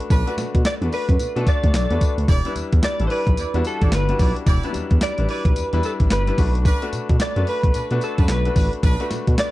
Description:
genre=R&B, new jack swing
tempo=110 BPM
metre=4/4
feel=swing 61% on 16ths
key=unclear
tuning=A4 = 436 Hz
part: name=clear concert grand piano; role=accompaniment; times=0.0-9.5 s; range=F#3 to D5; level=-28 LUFS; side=left 4 dB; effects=none
part: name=clean 12-bit digital drum machine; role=drums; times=0.0-9.5 s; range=handclaps, hi-hat, kick drum, snare drum, tambourine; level=-19 LUFS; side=equal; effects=none
part: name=clear horn section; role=stabs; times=0.1-9.1 s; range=D4 to D5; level=-31 LUFS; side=right 3 dB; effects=none
part: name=smooth gliding synth bass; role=bass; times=0.1-9.4 s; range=E1 to B2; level=-22 LUFS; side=equal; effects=none
part: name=direct-recorded clean electric guitar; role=melody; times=0.7-9.5 s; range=A4 to D5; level=-26 LUFS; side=equal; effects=ensemble chorus
room=little or no reverb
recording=dark, warm production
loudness=-17 LUFS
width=side -17 dB against mid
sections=0.0-9.5 A section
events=none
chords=0.0 Bm7; 2.3 Em7; 6.4 Bm7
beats=| 0.10 0.65 1.19 1.74 | 2.28 2.83 3.38 3.92 | 4.47 5.01 5.56 6.10 | 6.65 7.19 7.74 8.28 | 8.83 9.38

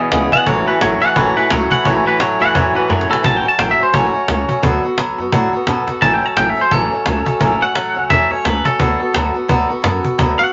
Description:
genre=rockabilly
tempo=173 BPM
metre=4/4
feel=swing 59% on 8ths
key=A major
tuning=A4 = 440 Hz
part: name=picked swing-style acoustic guitar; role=accompaniment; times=0.0-10.5 s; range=A2 to A4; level=-20 LUFS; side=equal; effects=none
part: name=twangy electric guitar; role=riff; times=0.0-3.2 s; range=E2 to F#3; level=-21 LUFS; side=equal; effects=spring reverb
part: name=upright bass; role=bass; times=0.1-10.4 s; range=A1 to B2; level=-24 LUFS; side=equal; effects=none
part: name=cajon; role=drums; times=0.1-10.4 s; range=none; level=-22 LUFS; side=equal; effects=none
part: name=twangy electric guitar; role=melody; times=0.3-10.5 s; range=A4 to A5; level=-19 LUFS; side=equal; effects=none
room=moderate studio ambience, RT60 0.5 s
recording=vinyl crackle, nothing above 7.6 kHz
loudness=-15 LUFS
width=mono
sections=0.0-3.2 A section; 3.2-10.5 A section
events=drum fill 2.9-3.2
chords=0.5 A6; 4.6 D6; 6.0 A6; 8.8 D6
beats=0.12 | 0.47 0.81 1.16 1.51 | 1.85 2.20 2.55 2.90 | 3.24 3.59 3.94 4.28 | 4.63 4.98 5.33 5.67 | 6.02 6.37 6.71 7.06 | 7.41 7.75 8.10 8.45 | 8.80 9.14 9.49 9.84 | 10.19

